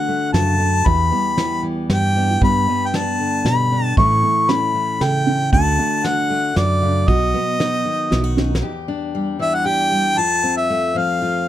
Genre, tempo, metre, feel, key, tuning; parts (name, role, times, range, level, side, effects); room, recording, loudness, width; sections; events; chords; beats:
acoustic folk duo or small band; 116 BPM; 3/4; straight; E dorian; A4 = 439 Hz
warm harmonica; melody; 0.0-11.5 s; D5 to C#6; -18 LUFS; left 1 dB
fingerpicked steel-string acoustic guitar; accompaniment; 0.0-11.5 s; E2 to G4; -24 LUFS; left 3 dB
felt-muted upright piano; arpeggios; 0.0-8.7 s; E3 to A4; -25 LUFS; right 6 dB
fingered electric bass; bass; 0.3-8.6 s; B1 to C#3; -19 LUFS; right 1 dB
soft brush drum kit; drums; 0.3-8.7 s; hi-hat, kick drum, snare drum; -21 LUFS; equal
little or no reverb; close, detailed microphones; -16 LUFS; side -12 dB against mid
0.0-8.6 A section; 8.6-11.5 B section
drum fill 8.4
0.0 D; 0.9 Em; 2.4 G; 4.0 A; 5.5 D; 7.1 B; 8.6 Em7; 10.2 F
0.34 | 0.86 1.38 1.90 | 2.42 2.93 3.45 | 3.97 4.49 5.01 | 5.53 6.04 6.56 | 7.08 7.60 8.11 | 8.63 9.15 9.66 | 10.18 10.70 11.21